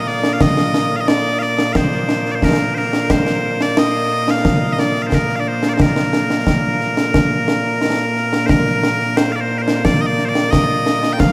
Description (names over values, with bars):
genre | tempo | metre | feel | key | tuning
scottish traditional, Scottish pipe music | 89 BPM | 4/4 | straight | Bb major | A4 = 439 Hz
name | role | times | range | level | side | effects
loud bright bagpipes | melody | 0.0-11.3 s | Bb2 to G5 | -20 LUFS | equal | none
concert snare drum and concert bass drum | drums | 0.1-11.3 s | none | -19 LUFS | equal | none
room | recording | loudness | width
wet huge ambient reverb, RT60 7.1 s | heard from further back in the room | -17 LUFS | mono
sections
0.0-8.5 A section; 8.5-11.3 B section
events
none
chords
none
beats
| 0.40 1.08 1.75 2.43 | 3.10 3.77 4.45 5.12 | 5.80 6.47 7.14 7.82 | 8.49 9.17 9.84 10.52 | 11.19